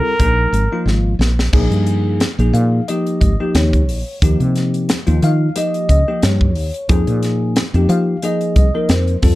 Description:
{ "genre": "electric jazz fusion", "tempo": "90 BPM", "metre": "4/4", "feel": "swing 55% on 16ths", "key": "Bb dorian", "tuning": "A4 = 439 Hz", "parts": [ { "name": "trumpet with plunger mute", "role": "melody", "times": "0.0-0.8 s", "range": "Bb4", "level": "-18 LUFS", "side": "right 1 dB", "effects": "slapback echo" }, { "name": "bell-like tine electric piano", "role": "accompaniment", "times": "0.0-9.4 s", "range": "F3 to F5", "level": "-19 LUFS", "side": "left 1 dB", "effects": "lush chorus" }, { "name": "woody fretless electric bass", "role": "bass", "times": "0.2-9.4 s", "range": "Ab1 to F3", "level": "-15 LUFS", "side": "equal", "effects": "none" }, { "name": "crisp fusion drum kit", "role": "drums", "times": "0.2-9.4 s", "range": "crash cymbal, hi-hat, kick drum, snare drum", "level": "-18 LUFS", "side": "equal", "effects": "none" } ], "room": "light reverb", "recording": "dark, warm production", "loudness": "-13 LUFS", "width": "side -17 dB against mid", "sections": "0.0-1.5 A section; 1.5-9.4 B section", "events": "drum fill 0.9-1.5", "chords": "0.2 Bb5; 1.5 Bbm7; 4.2 Eb7; 6.9 Abmaj13" }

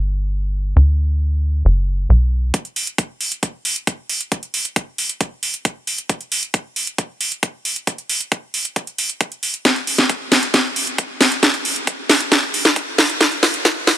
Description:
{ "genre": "uplifting trance", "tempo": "135 BPM", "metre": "4/4", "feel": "straight", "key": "unclear", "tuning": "A4 = 439 Hz", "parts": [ { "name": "tight sequencer bass", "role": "bass", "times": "0.0-2.5 s", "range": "F#1 to D2", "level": "-15 LUFS", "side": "equal", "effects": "sidechain pumping" }, { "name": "electronic kick drum", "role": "drums", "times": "2.5-13.7 s", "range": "none", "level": "-20 LUFS", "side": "equal", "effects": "high-pass filter on kick, high-pass filter on room" }, { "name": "house drum kit", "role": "drums", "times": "2.5-14.0 s", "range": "hi-hat, snare drum", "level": "-16 LUFS", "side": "equal", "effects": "none" } ], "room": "light reverb", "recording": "high-pass filter", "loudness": "-16 LUFS", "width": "side -12 dB against mid", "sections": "0.0-2.5 A section; 2.5-14.0 B section", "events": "build-up 2.5-14.0; drum fill 9.7-14.0", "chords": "none" }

